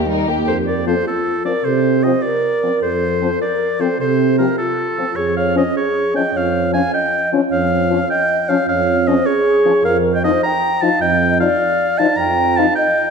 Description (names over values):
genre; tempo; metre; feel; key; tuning
cinematic, heroic adventure film score; 103 BPM (dotted quarters); 12/8; straight; F mixolydian; A4 = 440 Hz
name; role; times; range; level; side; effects
warm symphonic violin section; melody; 0.0-0.5 s; G4 to Bb4; -28 LUFS; left 4 dB; none
warm symphonic violin section; second line; 0.0-0.5 s; Eb4 to G4; -23 LUFS; left 5 dB; none
dark studio viola section; accompaniment; 0.0-0.5 s; G3 to Bb3; -24 LUFS; right 2 dB; none
clear oboe; second line; 0.5-13.1 s; A4 to Bb5; -20 LUFS; right 1 dB; none
mellow hollow concert flute; second line; 0.5-13.1 s; F4 to G5; -18 LUFS; left 1 dB; none
warm trombone section; sustained chords; 0.5-12.7 s; F2 to C3; -20 LUFS; right 4 dB; none
mellow French horn section; sustained chords; 0.9-12.6 s; F3 to Eb4; -22 LUFS; left 4 dB; none
room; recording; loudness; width
wet scoring stage reverb, RT60 1.9 s; none; -14 LUFS; side -5 dB against mid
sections
0.5-13.1 A section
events
none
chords
0.5 F; 5.2 Db/F; 9.8 Ebadd9/F